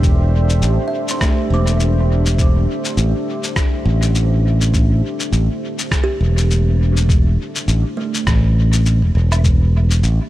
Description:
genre	ambient dub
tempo	102 BPM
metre	4/4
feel	swing 57% on 16ths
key	A minor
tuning	A4 = 441 Hz
part	deep dark ambient pad	sustained chords	0.0-10.3 s	A3 to E5	-24 LUFS	left 1 dB	chorus, built-in reverb
part	modern bright fingered electric bass	bass	0.0-10.2 s	E1 to A1	-14 LUFS	equal	none
part	electronic cabasa, rim click and woodblock	drums	0.0-10.2 s	none	-25 LUFS	left 2 dB	dub echo
part	electronic kick drum	drums	0.0-9.6 s	none	-16 LUFS	equal	none
part	kalimba	arpeggios	0.9-9.7 s	A3 to D6	-27 LUFS	right 3 dB	vintage 12-bit sampler grit, dub echo
room	digital ambience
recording	none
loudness	-14 LUFS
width	side -15 dB against mid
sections	0.0-10.3 A section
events	none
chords	0.0 Am7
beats	| 0.03 0.62 1.21 1.80 | 2.39 2.98 3.56 4.15 | 4.74 5.33 5.92 6.50 | 7.09 7.68 8.27 8.86 | 9.45 10.03

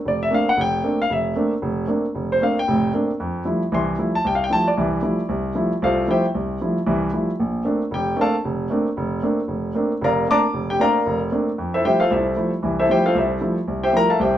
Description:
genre	jazz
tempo	229 BPM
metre	4/4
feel	swing 59% on 8ths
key	F major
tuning	A4 = 440 Hz
part	warm baby grand piano	solo	0.1-14.4 s	F1 to D6	-18 LUFS	equal	none
room	moderate studio reverb, RT60 0.8 s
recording	band playing live in one room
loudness	-18 LUFS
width	side -11 dB against mid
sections	0.0-11.6 A section; 11.6-14.4 A section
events	none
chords	0.0 Bbmaj9; 3.2 Fmaj9; 7.4 Bbmaj9; 11.6 Fmaj9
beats	| 0.05 0.31 0.57 0.83 | 1.10 1.36 1.62 1.88 | 2.14 2.40 2.67 2.93 | 3.19 3.45 3.71 3.98 | 4.24 4.50 4.76 5.03 | 5.29 5.55 5.81 6.08 | 6.34 6.60 6.86 7.12 | 7.39 7.65 7.91 8.17 | 8.44 8.70 8.96 9.22 | 9.48 9.74 10.01 10.27 | 10.53 10.79 11.05 11.31 | 11.57 11.84 12.10 12.36 | 12.62 12.88 13.14 13.40 | 13.67 13.93 14.19

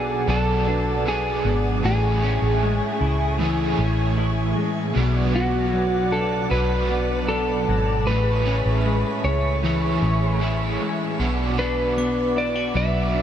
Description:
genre	dream pop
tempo	77 BPM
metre	4/4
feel	straight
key	B dorian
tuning	A4 = 440 Hz
part	electric slide guitar	melody	0.0-13.2 s	F#4 to E5	-25 LUFS	equal	digital delay
part	overdriven semi-hollow guitar	accompaniment	0.0-13.2 s	A2 to G#4	-28 LUFS	right 4 dB	tremolo, ensemble chorus
part	hollow soft pad	sustained chords	0.0-13.2 s	G#4 to D6	-30 LUFS	right 1 dB	ensemble chorus
part	semi-hollow electric guitar	arpeggios	0.0-13.2 s	A2 to F#4	-26 LUFS	left 4 dB	lush chorus, digital delay
part	vintage muted fingered electric bass	bass	0.0-13.2 s	G#1 to C#2	-24 LUFS	equal	none
part	glockenspiel with brass mallets	texture	12.0-12.8 s	D6	-37 LUFS	equal	digital delay
room	moderate shimmer reverb, RT60 7.7 s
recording	none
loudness	-19 LUFS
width	side -10 dB against mid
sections	0.0-13.2 A section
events	none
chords	0.0 Bm; 1.8 Amaj7; 5.0 Bm; 8.1 Amaj7; 11.2 Bm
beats	0.28 1.06 | 1.84 2.62 3.40 4.18 | 4.96 5.74 6.51 7.29 | 8.07 8.85 9.63 10.41 | 11.19 11.97 12.75

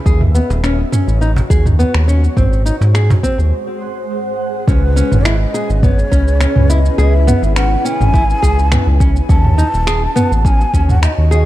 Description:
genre	organic downtempo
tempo	104 BPM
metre	4/4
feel	straight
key	C# minor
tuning	A4 = 441 Hz
part	granular cloud pad	sustained chords	0.0-11.5 s	G#3 to F#5	-24 LUFS	equal	built-in reverb, sidechain pumping
part	nylon-string guitar	arpeggios	0.1-11.5 s	B3 to G#4	-20 LUFS	left 1 dB	ping-pong delay
part	round analog bass	bass	0.1-11.5 s	D#1 to G#2	-13 LUFS	equal	sidechain pumping
part	deep house drum kit	drums	0.1-11.4 s	finger snaps, shaker, toms	-19 LUFS	right 1 dB	overdrive
part	electronic kick drum	drums	0.1-10.9 s	none	-14 LUFS	equal	overdrive
part	cajon	percussion	0.5-3.2 s	none	-23 LUFS	right 1 dB	none
part	breathy mellow ney	melody	4.7-11.5 s	B4 to A5	-20 LUFS	equal	ping-pong delay
room	little or no reverb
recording	dark, warm production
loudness	-11 LUFS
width	side -15 dB against mid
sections	0.0-4.7 A section; 4.7-11.5 B section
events	break 3.5-4.7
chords	0.1 D#m7b5; 2.4 G#7; 4.7 C#m7; 9.3 D#m7b5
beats	| 0.06 0.64 1.21 1.79 | 2.37 2.94 3.52 4.10 | 4.68 5.25 5.83 6.41 | 6.98 7.56 8.14 8.71 | 9.29 9.87 10.45 11.02

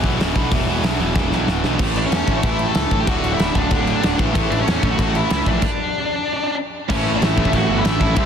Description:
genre	punk rock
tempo	188 BPM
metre	4/4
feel	straight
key	unclear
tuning	A4 = 440 Hz
part	cranked stack guitar	riff	0.0-8.3 s	D2 to C5	-24 LUFS	right 12 dB	overdrive
part	overdriven electric guitar	riff	0.0-8.3 s	D2 to C4	-25 LUFS	left 13 dB	none
part	fuzz picked electric bass	bass	0.0-8.3 s	D1 to E2	-23 LUFS	equal	overdrive
part	big rock drum kit	drums	0.0-8.2 s	crash cymbal, hi-hat, kick drum, snare drum	-21 LUFS	equal	none
part	high-gain lead guitar	melody	2.0-8.3 s	C#4 to A5	-23 LUFS	left 1 dB	distortion, digital delay
part	distorted electric guitar	riff	4.3-8.3 s	A2 to C4	-26 LUFS	left 1 dB	distortion
room	little or no reverb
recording	dense, heavily limited modern master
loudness	-16 LUFS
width	side -8 dB against mid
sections	0.0-1.8 A section; 1.8-6.9 B section; 6.9-8.3 C section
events	drum fill 1.2-1.8; stop 5.6-6.9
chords	0.0 E5; 1.8 A; 3.1 D; 4.2 A; 5.6 N.C.; 6.9 A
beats	0.20 | 0.52 0.84 1.16 1.48 | 1.80 2.12 2.44 2.76 | 3.08 3.39 3.71 4.03 | 4.35 4.67 4.99 5.31 | 5.62 5.94 6.26 6.58 | 6.90 7.21 7.53 7.85 | 8.17

